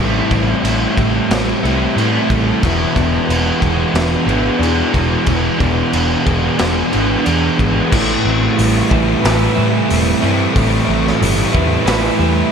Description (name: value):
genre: rock, shoegaze and dream pop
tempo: 91 BPM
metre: 4/4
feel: straight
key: A minor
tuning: A4 = 438 Hz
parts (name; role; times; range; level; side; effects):
- overdriven semi-hollow guitar; riff; 0.0-12.5 s; E2 to B4; -20 LUFS; right 7 dB; reverse reverb
- overdriven semi-hollow guitar; riff; 0.0-12.5 s; E2 to A3; -19 LUFS; right 1 dB; analog chorus
- thick fuzz guitar; riff; 0.0-12.5 s; A2 to B4; -20 LUFS; left 8 dB; distortion, lush chorus
- vintage muted picked electric bass; bass; 0.0-12.4 s; E1 to A2; -19 LUFS; equal; none
- raw garage drum kit; drums; 0.3-12.0 s; crash cymbal, hi-hat, kick drum, snare drum; -20 LUFS; equal; none
room: moderate huge ambient reverb, RT60 7.8 s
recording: dreamy mix soaked in reverb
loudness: -12 LUFS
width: side -7 dB against mid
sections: 0.0-7.9 A section; 7.9-12.5 B section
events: none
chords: 0.0 Am7; 2.6 E7; 7.9 Am9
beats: 0.65 1.31 1.97 | 2.63 3.29 3.95 4.62 | 5.28 5.94 6.60 7.26 | 7.92 8.57 9.23 9.89 | 10.55 11.21 11.86